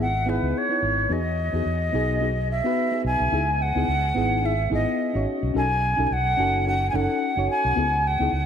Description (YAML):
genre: sunset chillout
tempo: 108 BPM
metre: 4/4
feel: swing 56% on 16ths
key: C# minor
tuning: A4 = 445 Hz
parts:
  - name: mellow silver concert flute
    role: melody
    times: 0.0-8.5 s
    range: B4 to G#5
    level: -24 LUFS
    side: right 1 dB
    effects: diffuse ambient delay
  - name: mellow FM electric piano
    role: accompaniment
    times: 0.0-8.3 s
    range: B3 to C#5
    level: -27 LUFS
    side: left 2 dB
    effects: chorus, auto-pan, ping-pong delay
  - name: mellow fretless electric bass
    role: bass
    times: 0.0-8.5 s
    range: F#1 to E2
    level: -26 LUFS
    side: equal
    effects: none
room: moderate plate reverb, RT60 3.4 s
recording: dreamy mix soaked in reverb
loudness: -21 LUFS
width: side -8 dB against mid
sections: 0.0-3.3 A section; 3.3-8.5 B section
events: none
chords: 0.0 C#m9; 1.1 Emaj7; 3.3 C#m9; 5.3 B9; 7.8 C#m9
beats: 0.55 | 1.10 1.66 2.21 2.77 | 3.33 3.88 4.44 4.99 | 5.55 6.10 6.66 7.21 | 7.77 8.33